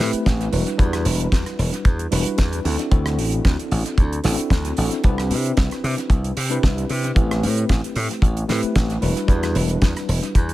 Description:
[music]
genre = nu-disco, nu disco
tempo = 113 BPM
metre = 4/4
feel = swing 53% on 16ths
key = A dorian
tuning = A4 = 439 Hz
[part]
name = tine electric piano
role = accompaniment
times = 0.0-10.5 s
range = G3 to B4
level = -25 LUFS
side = equal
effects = overdrive, fast stereo tremolo, dub echo
[part]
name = slap bass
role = bass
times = 0.0-10.5 s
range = E1 to C3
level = -22 LUFS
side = equal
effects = none
[part]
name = damped 70s drum kit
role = drums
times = 0.0-10.5 s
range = hi-hat, rim click, snare drum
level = -27 LUFS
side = right 1 dB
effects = studio reverb, dub echo
[part]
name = kick drum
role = drums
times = 0.3-10.5 s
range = none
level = -17 LUFS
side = equal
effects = studio reverb
[sound]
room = small room ambience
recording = echo-heavy mix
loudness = -18 LUFS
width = side -16 dB against mid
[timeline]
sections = 0.0-10.5 A section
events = none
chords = 0.0 Am7; 0.5 Em7; 2.7 D7; 5.0 Cmaj7; 7.2 Am7; 9.0 Em7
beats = 0.26 | 0.79 1.32 1.85 2.38 | 2.92 3.45 3.98 4.51 | 5.04 5.57 6.10 6.63 | 7.16 7.70 8.23 8.76 | 9.29 9.82 10.35

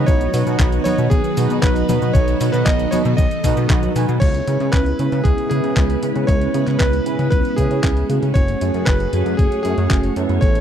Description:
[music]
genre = italo disco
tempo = 116 BPM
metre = 4/4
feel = straight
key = C# minor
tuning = A4 = 436 Hz
[part]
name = bright electric grand piano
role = melody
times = 0.0-10.6 s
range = G#4 to D#5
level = -24 LUFS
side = equal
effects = tape echo
[part]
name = string machine, full ensemble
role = sustained chords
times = 0.0-10.6 s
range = D#3 to C#5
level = -22 LUFS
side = equal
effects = ensemble chorus
[part]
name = analog synth brass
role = stabs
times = 0.0-10.6 s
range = A3 to G#5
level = -25 LUFS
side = right 5 dB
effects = chorus, cassette tape
[part]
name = chorused synth bass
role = bass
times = 0.0-10.6 s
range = F#1 to C#3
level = -20 LUFS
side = equal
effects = none
[part]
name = clean 12-bit digital drum machine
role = drums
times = 0.1-10.6 s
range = cabasa, congas, crash cymbal, handclaps, hi-hat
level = -27 LUFS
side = left 2 dB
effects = overdrive
[part]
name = electronic kick drum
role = drums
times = 0.1-10.5 s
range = none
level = -17 LUFS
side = equal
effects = overdrive
[sound]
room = little or no reverb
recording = dry, close 1970s-style studio recording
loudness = -15 LUFS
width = side -9 dB against mid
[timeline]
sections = 0.0-4.2 A section; 4.2-10.6 B section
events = none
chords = 0.1 B; 4.2 C#m7; 8.4 F#madd9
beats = | 0.08 0.60 1.11 1.63 | 2.15 2.67 3.18 3.70 | 4.22 4.73 5.25 5.77 | 6.29 6.80 7.32 7.84 | 8.36 8.87 9.39 9.91 | 10.42

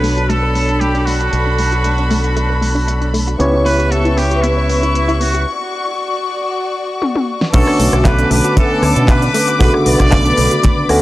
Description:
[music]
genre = nu-disco, nu disco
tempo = 116 BPM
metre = 4/4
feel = straight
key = B minor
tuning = A4 = 442 Hz
[part]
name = muted trumpet section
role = melody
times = 0.0-10.9 s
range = E4 to D5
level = -20 LUFS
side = right 1 dB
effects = analog delay
[part]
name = barky tine electric piano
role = accompaniment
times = 0.0-11.0 s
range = C#3 to C#5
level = -18 LUFS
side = equal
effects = phaser
[part]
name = dark studio string section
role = sustained chords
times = 0.0-11.0 s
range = D4 to D6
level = -20 LUFS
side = left 2 dB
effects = sidechain pumping
[part]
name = wide unison pluck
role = arpeggios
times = 0.0-11.0 s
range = A3 to C#5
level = -24 LUFS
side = equal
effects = sidechain pumping, analog delay
[part]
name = fingered electric bass with an envelope filter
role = bass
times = 0.0-11.0 s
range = B1 to B2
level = -16 LUFS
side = equal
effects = none
[part]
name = pop drum kit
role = drums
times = 0.0-11.0 s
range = crash cymbal, handclaps, hi-hat, rim click, snare drum, toms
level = -22 LUFS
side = left 1 dB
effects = low-pass filter on hats, low-pass filter on toms, low-pass filter on snare, low-pass filter on cymbals
[part]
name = kick drum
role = drums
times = 7.5-10.8 s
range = none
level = -13 LUFS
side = equal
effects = none
[sound]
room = light reverb, studio reverb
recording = dry, gritty hardware recording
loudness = -12 LUFS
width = side -16 dB against mid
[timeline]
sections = 0.0-7.5 A section; 7.5-11.0 B section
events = break 5.5-7.5; drum fill 7.0-7.5; drop 7.5-11.0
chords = 0.0 Bm7; 3.4 C#m7b5; 5.5 Dmaj7; 7.5 Bm7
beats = 0.29 0.81 | 1.33 1.85 2.36 2.88 | 3.40 3.92 4.43 4.95 | 5.47 5.98 6.50 7.02 | 7.54 8.05 8.57 9.09 | 9.61 10.12 10.64

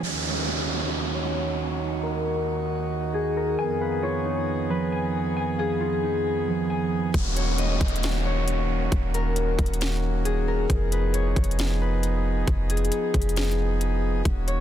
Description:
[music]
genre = hip hop, atmospheric cloud-rap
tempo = 135 BPM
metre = 4/4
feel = half-time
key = Eb minor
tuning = A4 = 439 Hz
[part]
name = concert harp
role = melody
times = 0.0-14.6 s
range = Ab4 to Eb5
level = -30 LUFS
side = left 5 dB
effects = low-pass filter, digital delay
[part]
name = pipe organ, principal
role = sustained chords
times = 0.0-14.6 s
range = Eb2 to Ab4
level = -28 LUFS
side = right 4 dB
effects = sidechain pumping, low-pass filter
[part]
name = mellow electric guitar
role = arpeggios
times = 0.0, 3.6-7.1 s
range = F3 to Ab5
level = -31 LUFS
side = right 1 dB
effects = low-pass filter, digital delay
[part]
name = downlifter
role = sound effects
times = 0.0-3.6, 7.1-10.7 s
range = none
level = -32 LUFS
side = equal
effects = none
[part]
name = clean 808-style bass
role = bass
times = 7.1-14.6 s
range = Eb1 to F1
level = -25 LUFS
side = equal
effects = none
[part]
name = trap drum kit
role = drums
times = 7.1-14.6 s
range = hi-hat, kick drum, snare drum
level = -29 LUFS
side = equal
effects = none
[sound]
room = digital ambience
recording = dense, heavily limited modern master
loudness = -23 LUFS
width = side -11 dB against mid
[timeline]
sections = 0.0-7.1 A section; 7.1-14.6 B section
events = filter sweep 0.0-7.1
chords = 0.0 Ebm7; 3.6 Fm7b5; 7.1 Ebm7; 10.7 Fm7b5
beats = | 0.03 0.47 0.92 1.36 | 1.81 2.25 2.70 3.14 | 3.59 4.03 4.47 4.92 | 5.36 5.81 6.25 6.70 | 7.14 7.59 8.03 8.47 | 8.92 9.36 9.81 10.25 | 10.70 11.14 11.59 12.03 | 12.47 12.92 13.36 13.81 | 14.25

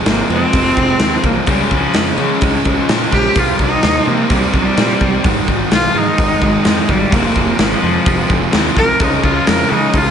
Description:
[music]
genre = quiet-loud alternative rock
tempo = 128 BPM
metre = 4/4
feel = straight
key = unclear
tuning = A4 = 439 Hz
[part]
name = picked steel-string acoustic guitar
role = arpeggios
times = 0.0-3.4 s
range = F2 to Db4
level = -24 LUFS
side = right 4 dB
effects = slapback echo
[part]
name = fuzz guitar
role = riff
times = 0.0-10.1 s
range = F2 to Eb4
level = -20 LUFS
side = right 10 dB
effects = distortion, slapback echo
[part]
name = sludgy distorted guitar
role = riff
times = 0.0-10.1 s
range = F2 to Db4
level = -20 LUFS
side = left 10 dB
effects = overdrive
[part]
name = clear cello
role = melody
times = 0.1-10.1 s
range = F3 to Bb4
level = -16 LUFS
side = equal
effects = slapback echo
[part]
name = fuzz picked electric bass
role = bass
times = 0.1-10.1 s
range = F1 to Db3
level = -21 LUFS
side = equal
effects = overdrive
[part]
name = big rock drum kit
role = drums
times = 0.1-10.0 s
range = hi-hat, kick drum, snare drum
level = -17 LUFS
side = equal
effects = none
[sound]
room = moderate lush hall reverb, RT60 1.7 s, small room ambience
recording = big arena sound, nothing above 10.9 kHz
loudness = -11 LUFS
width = side -8 dB against mid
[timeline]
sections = 0.0-10.1 A section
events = cello solo 0.0-10.1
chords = 0.0 Fm; 1.5 Db; 3.4 Cm; 5.2 Abm; 7.1 Fm; 9.0 Db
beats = 0.07 0.54 1.01 | 1.48 1.95 2.42 2.89 | 3.36 3.83 4.30 4.77 | 5.24 5.71 6.18 6.65 | 7.12 7.59 8.06 8.53 | 9.00 9.47 9.94

